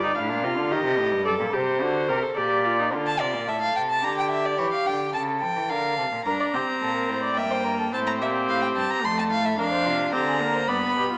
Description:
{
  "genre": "classical, baroque-style fugue for string quartet",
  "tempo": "108 BPM",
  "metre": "3/4",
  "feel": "straight",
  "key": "G minor",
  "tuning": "A4 = 439 Hz",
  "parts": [
    { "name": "dark violin", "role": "second line", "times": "0.0-11.2 s", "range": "F4 to F5", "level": "-29 LUFS", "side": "equal", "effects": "none" },
    { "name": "warm viola", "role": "accompaniment", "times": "0.0-2.8, 6.3-11.2 s", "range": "A3 to Bb4", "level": "-29 LUFS", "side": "equal", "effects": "none" },
    { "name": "rich cello", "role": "bass", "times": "0.0-11.0 s", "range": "F2 to F3", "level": "-32 LUFS", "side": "equal", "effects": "none" },
    { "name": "rich violin", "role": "melody", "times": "3.1-11.2 s", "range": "C#5 to C6", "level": "-29 LUFS", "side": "equal", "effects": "none" }
  ],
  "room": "wet recital hall reverb, RT60 1.4 s",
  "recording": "small speaker sound",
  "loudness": "-24 LUFS",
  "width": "mono",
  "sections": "0.0-6.3 A section; 6.3-11.2 B section",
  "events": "none",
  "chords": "0.0 Gm; 0.7 Cm; 1.3 D7/F#; 2.4 Gm/Bb; 2.9 Dm; 4.0 Gm/D; 4.6 A7; 5.7 Dm; 6.3 Gm (rootless); 7.4 Edim/G; 7.9 Am; 9.0 F; 9.6 Dm7/F"
}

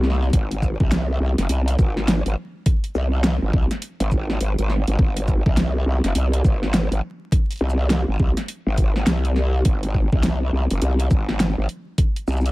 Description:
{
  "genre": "glitch hop",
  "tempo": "103 BPM",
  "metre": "4/4",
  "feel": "swing 62% on 16ths",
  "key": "unclear",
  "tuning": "A4 = 436 Hz",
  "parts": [
    { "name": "growl bass", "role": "bass", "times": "0.0-12.5 s", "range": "F#1 to B#1", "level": "-20 LUFS", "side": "equal", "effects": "chorus" },
    { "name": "pop drum kit", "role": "drums", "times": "0.0-12.5 s", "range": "hi-hat, shaker, snare drum", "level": "-24 LUFS", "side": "equal", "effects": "overdrive" },
    { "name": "electronic kick drum", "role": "drums", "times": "0.3-12.1 s", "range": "none", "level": "-19 LUFS", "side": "equal", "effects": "overdrive" }
  ],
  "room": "little or no reverb",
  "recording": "vinyl crackle",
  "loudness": "-18 LUFS",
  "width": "side -19 dB against mid",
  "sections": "0.0-12.5 A section",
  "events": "none",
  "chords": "none"
}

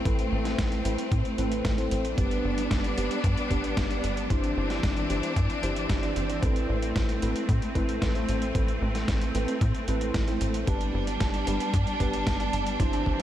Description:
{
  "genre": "italo disco",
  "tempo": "113 BPM",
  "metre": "4/4",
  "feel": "straight",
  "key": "A minor",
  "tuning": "A4 = 440 Hz",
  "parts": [
    { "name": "bright studio string section", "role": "sustained chords", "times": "0.0-13.2 s", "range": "E3 to D4", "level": "-31 LUFS", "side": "equal", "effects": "none" },
    { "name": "mellow tine electric piano", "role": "stabs", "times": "0.0-13.2 s", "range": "B3 to D5", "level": "-32 LUFS", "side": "right 1 dB", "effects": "lush chorus, tape echo" },
    { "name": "tight sequencer bass", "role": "bass", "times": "0.0-13.2 s", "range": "G1 to A2", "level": "-30 LUFS", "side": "equal", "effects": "none" },
    { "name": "dusty soul sampler-style drum kit", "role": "drums", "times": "0.1-13.2 s", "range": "hi-hat, snare drum", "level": "-36 LUFS", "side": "equal", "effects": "overdrive, small room reverb" },
    { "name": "electronic kick drum", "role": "drums", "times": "0.1-13.2 s", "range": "none", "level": "-28 LUFS", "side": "equal", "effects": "overdrive, small room reverb" }
  ],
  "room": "moderate huge ambient reverb, RT60 7.3 s",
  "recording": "dreamy mix soaked in reverb",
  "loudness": "-24 LUFS",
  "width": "side -12 dB against mid",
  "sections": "0.0-13.2 A section",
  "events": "none",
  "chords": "0.0 Amadd9; 2.2 G; 4.3 Cadd9/G; 6.4 Amadd9; 10.7 G"
}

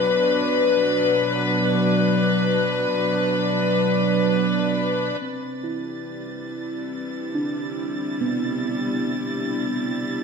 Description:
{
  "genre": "ambient",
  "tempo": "70 BPM",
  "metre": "3/4",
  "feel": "straight",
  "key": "unclear",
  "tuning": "A4 = 440 Hz",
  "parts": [
    { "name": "dark studio string section", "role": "sustained chords", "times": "0.0-10.2 s", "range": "B2 to B4", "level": "-21 LUFS", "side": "left 1 dB", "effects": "none" },
    { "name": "muted felt-like synth keys", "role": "arpeggios", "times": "0.0-10.2 s", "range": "B3 to B5", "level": "-28 LUFS", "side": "equal", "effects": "chorus, ping-pong delay" },
    { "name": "dark chamber violin section", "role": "texture", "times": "5.2-10.2 s", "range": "A6", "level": "-35 LUFS", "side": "right 4 dB", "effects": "none" }
  ],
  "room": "wet lush hall reverb, RT60 2.7 s",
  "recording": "none",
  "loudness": "-20 LUFS",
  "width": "side -5 dB against mid",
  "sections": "0.0-5.2 A section; 5.2-10.2 A section",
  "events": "fade-in on string section 5.2-10.2; fade-in on violin section 5.2-10.2",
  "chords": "0.0 Bm; 5.2 Cmaj9"
}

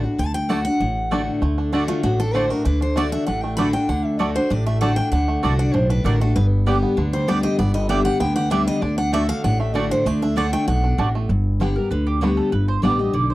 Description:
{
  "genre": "bluegrass",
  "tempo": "195 BPM",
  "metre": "4/4",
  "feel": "straight",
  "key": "D mixolydian",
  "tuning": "A4 = 440 Hz",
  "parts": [
    { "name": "picked steel-string acoustic guitar", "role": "accompaniment", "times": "0.0-13.3 s", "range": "G2 to G4", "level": "-22 LUFS", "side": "left 2 dB", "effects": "none" },
    { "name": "upright bass", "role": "bass", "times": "0.0-13.3 s", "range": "G1 to D2", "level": "-22 LUFS", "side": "equal", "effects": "none" },
    { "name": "picked steel-string acoustic guitar", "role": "melody", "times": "0.2-11.1 s", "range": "F4 to B5", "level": "-25 LUFS", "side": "left 1 dB", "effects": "none" },
    { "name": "bluegrass banjo", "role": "melody", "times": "0.5-12.9 s", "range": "G3 to G4", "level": "-29 LUFS", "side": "right 4 dB", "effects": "none" },
    { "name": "mandolin", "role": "stabs", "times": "0.5-13.3 s", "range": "A3 to A5", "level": "-25 LUFS", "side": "right 5 dB", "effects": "none" }
  ],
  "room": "little or no reverb",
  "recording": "dry, close 1970s-style studio recording",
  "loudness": "-18 LUFS",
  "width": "side -17 dB against mid",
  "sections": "0.0-1.4 A section; 1.4-11.3 B section; 11.3-13.3 C section",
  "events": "mandolin solo 11.3-13.3",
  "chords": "0.0 D; 6.4 G; 8.8 D; 11.3 G"
}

